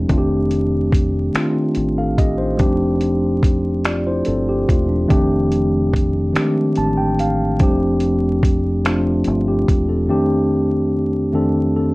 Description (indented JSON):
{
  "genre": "slow six-eight R&B",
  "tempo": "48 BPM (dotted quarters)",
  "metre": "6/8",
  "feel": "straight",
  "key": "F major",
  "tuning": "A4 = 440 Hz",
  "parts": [
    { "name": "mellow tine electric piano", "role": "accompaniment", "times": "0.0-11.9 s", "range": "F2 to A5", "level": "-17 LUFS", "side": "equal", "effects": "medium stereo tremolo" },
    { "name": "deep dub fingered electric bass", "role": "bass", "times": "0.0-10.1 s", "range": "E1 to A1", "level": "-23 LUFS", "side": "equal", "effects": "none" },
    { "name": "dusty soul sampler-style drum kit", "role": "drums", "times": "0.1-9.9 s", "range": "finger snaps, hi-hat, kick drum", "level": "-18 LUFS", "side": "equal", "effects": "none" }
  ],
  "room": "wet studio reverb, RT60 0.5 s",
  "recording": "worn, warbling old tape, cassette tape, vinyl crackle, warbly pitch drift",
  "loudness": "-15 LUFS",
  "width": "side -23 dB against mid",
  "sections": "0.0-11.9 A section",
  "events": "tine electric piano fill 6.3-7.6",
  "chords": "0.1 F13; 2.6 F6; 5.1 F13; 7.6 F6; 10.1 F13",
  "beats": "| 0.10 1.35 | 2.60 3.85 | 5.10 6.35 | 7.60 8.85 | 10.10 11.35"
}